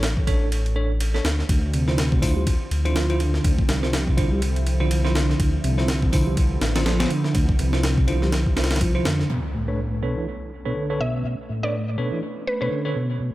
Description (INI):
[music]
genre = breakbeat, breaks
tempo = 123 BPM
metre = 4/4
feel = swing 58% on 16ths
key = unclear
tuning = A4 = 440 Hz
[part]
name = bell-like tine electric piano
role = stabs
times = 0.0-13.0 s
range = D4 to C#5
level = -30 LUFS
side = right 2 dB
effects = medium stereo tremolo, low-pass filter, dub echo
[part]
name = dark detuned saw bass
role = bass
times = 0.0-9.2 s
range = A1 to F2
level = -23 LUFS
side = equal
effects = tube saturation
[part]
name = breakbeat sampler-style drum kit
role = drums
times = 0.0-9.3 s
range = hi-hat, kick drum, ride cymbal, snare drum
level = -23 LUFS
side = equal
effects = none
[part]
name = phased analog pad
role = sustained chords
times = 1.5-13.3 s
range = D3 to E4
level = -31 LUFS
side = right 2 dB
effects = phaser, chorus, sidechain pumping
[part]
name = mellow tonewheel organ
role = riff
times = 1.5-13.3 s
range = A2 to G3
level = -26 LUFS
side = equal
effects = overdrive, fast rotary speaker, low-pass filter, dub echo
[part]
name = impact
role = sound effects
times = 9.3-11.2 s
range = none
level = -32 LUFS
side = equal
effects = none
[part]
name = mallet-like synth pluck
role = melody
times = 11.0-12.7 s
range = B4 to E5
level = -29 LUFS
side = equal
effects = chorus, old record sound, vintage 12-bit sampler grit, dub echo
[sound]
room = moderate spring reverb, RT60 1.8 s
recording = echo-heavy mix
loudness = -20 LUFS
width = side -16 dB against mid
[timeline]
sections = 0.0-9.3 A section; 9.3-13.3 B section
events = impact 9.3-11.2; filter sweep on tine electric piano 9.3-13.3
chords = 0.0 Bm9 (rootless); 1.2 Dm9; 9.3 Bm9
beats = 0.03 0.52 1.01 | 1.49 1.98 2.47 2.96 | 3.45 3.93 4.42 4.91 | 5.40 5.88 6.37 6.86 | 7.35 7.84 8.32 8.81 | 9.30 9.79 10.28 10.76 | 11.25 11.74 12.23 12.71 | 13.20